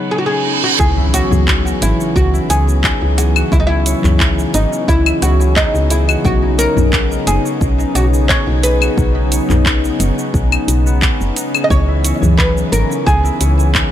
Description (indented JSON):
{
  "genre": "organic downtempo",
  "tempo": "88 BPM",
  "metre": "4/4",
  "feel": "swing 53% on 16ths",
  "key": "C# minor",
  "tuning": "A4 = 441 Hz",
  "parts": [
    { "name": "oud", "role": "melody", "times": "0.0-13.9 s", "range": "D#4 to D#5", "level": "-19 LUFS", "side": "right 1 dB", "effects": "digital delay" },
    { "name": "muted felt-like synth keys", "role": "accompaniment", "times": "0.0-13.9 s", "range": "E3 to E4", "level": "-23 LUFS", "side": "left 3 dB", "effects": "chorus, sidechain pumping, digital delay" },
    { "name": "warm analog pad", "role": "sustained chords", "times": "0.0-13.9 s", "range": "C#3 to D#5", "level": "-23 LUFS", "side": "right 3 dB", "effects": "wide subtle chorus, sidechain pumping" },
    { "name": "concert harp", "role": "arpeggios", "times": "0.0-13.9 s", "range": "G#3 to C#5", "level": "-23 LUFS", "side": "left 6 dB", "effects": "digital delay" },
    { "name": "reverse cymbal and impact", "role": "sound effects", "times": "0.0-3.5 s", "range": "none", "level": "-20 LUFS", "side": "right 3 dB", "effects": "none" },
    { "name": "woody FM bass", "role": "bass", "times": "0.8-13.8 s", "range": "F#1 to C#2", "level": "-15 LUFS", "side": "equal", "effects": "sidechain pumping" },
    { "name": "afro-pop drum kit", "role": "drums", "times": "0.8-13.9 s", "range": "claves, handclaps, hi-hat, shaker", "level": "-20 LUFS", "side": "left 1 dB", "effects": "none" },
    { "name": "electronic kick drum", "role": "drums", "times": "0.8-13.9 s", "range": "none", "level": "-17 LUFS", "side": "equal", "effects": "none" },
    { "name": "udu", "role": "percussion", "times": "1.3-12.4 s", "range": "none", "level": "-20 LUFS", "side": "left 1 dB", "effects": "none" }
  ],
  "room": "little or no reverb",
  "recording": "none",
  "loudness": "-12 LUFS",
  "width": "side -11 dB against mid",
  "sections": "0.8-13.9 A section",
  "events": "reverse cymbal 0.0-0.8; impact 0.8-3.5",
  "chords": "0.0 Badd9; 0.8 C#m7; 6.2 Badd9; 11.7 C#m7"
}